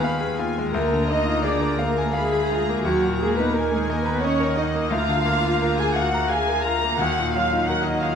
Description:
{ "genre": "classical, romantic movement for piano and orchestra", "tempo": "86 BPM", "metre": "3/4", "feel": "rubato", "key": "Eb minor", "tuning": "A4 = 440 Hz", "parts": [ { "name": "bright concert grand piano", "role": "melody", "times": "0.0-8.2 s", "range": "D2 to Bb5", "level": "-24 LUFS", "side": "left 2 dB", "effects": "none" }, { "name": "warm studio violin section", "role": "melody", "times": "0.0-8.2 s", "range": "F5 to Cb6", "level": "-35 LUFS", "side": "left 3 dB", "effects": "none" }, { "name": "dark studio violin section", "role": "second line", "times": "0.0-8.2 s", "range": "Gb4 to Bb5", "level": "-29 LUFS", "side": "left 1 dB", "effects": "none" }, { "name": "dark studio viola section", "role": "accompaniment", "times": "0.0-8.2 s", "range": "Gb4 to Bb5", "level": "-25 LUFS", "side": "equal", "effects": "none" }, { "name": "dark studio double bass section", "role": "bass", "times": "0.0-8.2 s", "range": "D2 to Eb2", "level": "-29 LUFS", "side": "right 3 dB", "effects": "none" }, { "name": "warm studio cello section", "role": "bass", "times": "0.0-8.2 s", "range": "Gb3 to Bb4", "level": "-29 LUFS", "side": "right 2 dB", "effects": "none" }, { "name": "timpani", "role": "percussion", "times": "7.0-8.0 s", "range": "none", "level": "barely audible", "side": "none", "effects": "none" } ], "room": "moderate scoring stage reverb, RT60 1.6 s", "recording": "none", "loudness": "-20 LUFS", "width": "side -7 dB against mid", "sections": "0.0-8.2 A section", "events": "none", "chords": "0.0 Fm7b5/Eb; 0.7 Bb7/D; 2.8 Ebm; 4.9 Bb/D; 7.0 Ebm" }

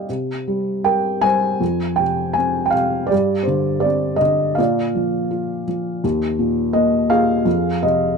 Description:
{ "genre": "classical, lyrical solo piano", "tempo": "77-86 BPM", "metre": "4/4", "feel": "rubato", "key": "C minor", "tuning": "A4 = 440 Hz", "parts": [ { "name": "felt-muted upright piano", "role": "solo", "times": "0.0-8.2 s", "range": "Eb2 to Ab5", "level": "-17 LUFS", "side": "equal", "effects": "none" } ], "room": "little or no reverb", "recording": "close, detailed microphones", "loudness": "-17 LUFS", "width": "side -5 dB against mid", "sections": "0.1-8.2 A section", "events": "none", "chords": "0.1 C5; 1.6 F5; 3.1 Gsus4; 4.6 Bb; 6.0 Eb5; 7.5 Fm" }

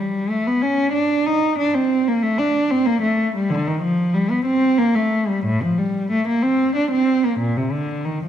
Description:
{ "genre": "classical, baroque-style suite movement for unaccompanied cello", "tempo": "93 BPM", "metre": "3/4", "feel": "rubato", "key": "G minor", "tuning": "A4 = 441 Hz", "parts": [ { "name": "warm cello", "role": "solo", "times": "0.0-8.3 s", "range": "A2 to Eb4", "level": "-17 LUFS", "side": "equal", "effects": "none" } ], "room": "wet recital hall reverb, RT60 1.5 s", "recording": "dark, warm production", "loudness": "-17 LUFS", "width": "side -10 dB against mid", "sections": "0.0-8.3 A section", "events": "none", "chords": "none" }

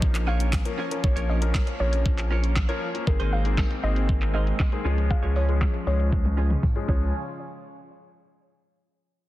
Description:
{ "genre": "dance-pop", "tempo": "118 BPM", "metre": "4/4", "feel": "straight", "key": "Db major", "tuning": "A4 = 440 Hz", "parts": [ { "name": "bright concert grand piano", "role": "accompaniment", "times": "0.0-7.1 s", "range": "Eb3 to Db5", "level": "-33 LUFS", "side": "left 7 dB", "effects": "none" }, { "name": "warm analog pad", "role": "sustained chords", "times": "0.0-7.1 s", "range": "Db3 to Ab5", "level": "-34 LUFS", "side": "equal", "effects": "chorus, tremolo, sidechain pumping" }, { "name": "direct-recorded clean electric guitar", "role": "riff", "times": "0.0-7.0 s", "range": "Bb3 to Db5", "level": "-36 LUFS", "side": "right 6 dB", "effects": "lush chorus" }, { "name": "saturated sub bass", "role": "bass", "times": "0.0-7.1 s", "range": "Ab1 to Db2", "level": "-24 LUFS", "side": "equal", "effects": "sidechain pumping" }, { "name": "pop drum kit", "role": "drums", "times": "0.0-7.0 s", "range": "crash cymbal, handclaps, hi-hat, kick drum, snare drum, toms", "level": "-25 LUFS", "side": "equal", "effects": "overdrive" }, { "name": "soft round pluck", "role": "melody", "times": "0.3-7.1 s", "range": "Bb4 to F5", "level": "-35 LUFS", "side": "equal", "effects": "chorus, sidechain pumping, digital delay" }, { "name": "tambourine", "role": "percussion", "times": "3.6-7.1 s", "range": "none", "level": "-55 LUFS", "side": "right 5 dB", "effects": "none" } ], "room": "light reverb", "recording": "dense, heavily limited modern master, low-pass filter", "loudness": "-22 LUFS", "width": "side -16 dB against mid", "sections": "0.0-7.1 A section; 7.1-9.2 B section", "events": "filter sweep 0.0-7.1; drum fill 6.1-7.1", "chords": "0.0 Bbm; 3.1 Abadd9; 4.9 Db; 7.1 N.C." }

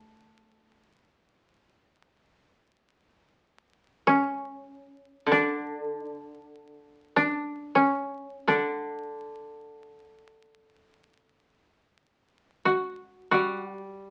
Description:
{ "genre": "japanese traditional, Japanese chamber music", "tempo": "free time", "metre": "none", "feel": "none", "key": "D ryukyu", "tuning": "A4 = 440 Hz", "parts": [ { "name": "koto", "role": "melody", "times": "0.0-14.1 s", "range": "C#4 to G4", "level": "-26 LUFS", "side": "equal", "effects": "none" }, { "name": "koto", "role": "accompaniment", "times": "0.0-14.1 s", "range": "D3 to A3", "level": "-33 LUFS", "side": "equal", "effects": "none" } ], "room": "moderate studio reverb, RT60 0.6 s", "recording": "very old 78 rpm record, vinyl crackle", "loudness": "-28 LUFS", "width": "mono", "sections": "0.0-14.1 A section", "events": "none", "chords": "none" }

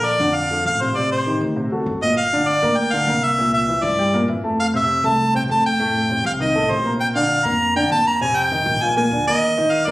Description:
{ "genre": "Afro-Cuban jazz", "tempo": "199 BPM", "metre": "4/4", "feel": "straight", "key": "unclear", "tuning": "A4 = 445 Hz", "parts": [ { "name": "clear harmonica", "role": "melody", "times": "0.0-9.9 s", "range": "C5 to Bb5", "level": "-18 LUFS", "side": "equal", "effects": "none" }, { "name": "warm concert grand piano", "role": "accompaniment", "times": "0.0-9.9 s", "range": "A2 to Bb5", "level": "-21 LUFS", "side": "equal", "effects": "none" }, { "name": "upright bass", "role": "bass", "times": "0.0-9.9 s", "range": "G1 to Bb2", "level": "-28 LUFS", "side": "equal", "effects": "none" } ], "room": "light reverb", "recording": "recorded on a phone in the room, studio reverb", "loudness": "-16 LUFS", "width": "side -18 dB against mid", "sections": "0.0-2.2 A section; 2.2-9.9 B section", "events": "none", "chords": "0.0 Bbmaj9; 1.0 Am7b5; 1.6 D7; 2.2 Gm7; 3.4 C13; 4.6 Fmaj7; 5.8 F9; 7.0 Bb; 8.2 F5; 8.8 Bb7" }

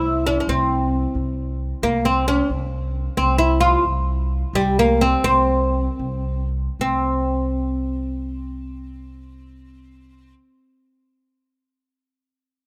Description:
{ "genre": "Persian modal ensemble", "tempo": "71-89 BPM (dotted quarters)", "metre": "6/8", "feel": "straight", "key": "C dastgah homayun", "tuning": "A4 = 440 Hz", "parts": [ { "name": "oud", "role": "melody", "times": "0.0-10.3 s", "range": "G3 to F4", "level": "-22 LUFS", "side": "equal", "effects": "none" }, { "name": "upright bass", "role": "bass", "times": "0.0-10.3 s", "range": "C2", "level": "-26 LUFS", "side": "equal", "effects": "none" } ], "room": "small room ambience", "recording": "rough home demo mix", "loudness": "-21 LUFS", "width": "mono", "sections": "0.0-6.8 A section; 6.8-10.2 B section", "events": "slowing down 3.9-6.8", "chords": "none" }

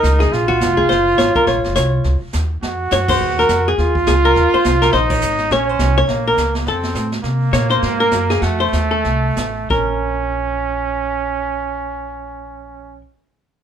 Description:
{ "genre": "jazz, small-group swing and bop", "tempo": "177-208 BPM", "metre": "4/4", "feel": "swing 59% on 8ths", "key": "Bb minor", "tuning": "A4 = 438 Hz", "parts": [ { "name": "archtop guitar, miked and amplified", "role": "melody", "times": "0.0-13.0 s", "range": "Gb4 to Db5", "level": "-18 LUFS", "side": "left 2 dB", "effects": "none" }, { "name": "clear trumpet", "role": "second line", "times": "0.0-13.0 s", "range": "A3 to Gb4", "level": "-19 LUFS", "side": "right 3 dB", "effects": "none" }, { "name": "upright bass", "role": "bass", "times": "0.0-13.0 s", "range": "F1 to C3", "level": "-20 LUFS", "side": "equal", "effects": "none" }, { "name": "jazz brush drum kit", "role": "drums", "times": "0.0-10.0 s", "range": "brushed snare drum, crash cymbal, hi-hat, kick drum, snare drum", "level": "-25 LUFS", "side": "equal", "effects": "none" } ], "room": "wet club reverb, RT60 0.6 s", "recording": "heard from further back in the room", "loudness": "-14 LUFS", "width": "side -8 dB against mid", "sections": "0.0-7.2 A section; 7.2-9.7 B section; 9.7-12.4 C section", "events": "band accent 3.1, 5.1; slowing down 7.2-9.7", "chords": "0.3 Bbm7; 2.6 F5; 3.8 Eb5; 4.9 Bbm7; 5.5 Bbmadd9; 6.1 Bbm; 6.7 F; 7.2 Gbadd9; 8.4 F7; 9.7 Bbm" }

